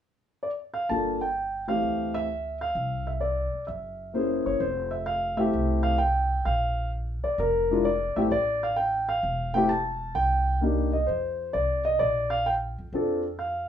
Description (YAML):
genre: jazz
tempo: 130 BPM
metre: 4/4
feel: swing 68% on 8ths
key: F major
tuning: A4 = 438 Hz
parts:
  - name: warm concert grand piano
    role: melody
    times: 0.4-13.7 s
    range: E3 to A5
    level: -25 LUFS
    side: equal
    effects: none
  - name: upright bass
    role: bass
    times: 0.9-13.7 s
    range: E1 to F2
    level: -31 LUFS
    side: equal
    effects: none
room: wet small room reverb, RT60 0.5 s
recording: heard from further back in the room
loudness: -24 LUFS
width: side -9 dB against mid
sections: 0.9-4.6 A section; 4.6-13.7 B section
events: none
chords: 0.0 N.C.; 0.9 Gm9; 1.8 D7sus4; 2.8 Csus2; 3.7 Gb9; 4.6 Fmaj7; 6.5 Bb; 8.3 A7(no3); 10.2 Cm7; 11.1 F5; 12.0 Bb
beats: 0.43 | 0.90 1.36 1.83 2.29 | 2.75 3.22 3.68 4.14 | 4.61 5.07 5.53 6.00 | 6.46 6.92 7.38 7.84 | 8.31 8.77 9.23 9.70 | 10.16 10.62 11.08 11.54 | 12.01 12.47 12.93 13.39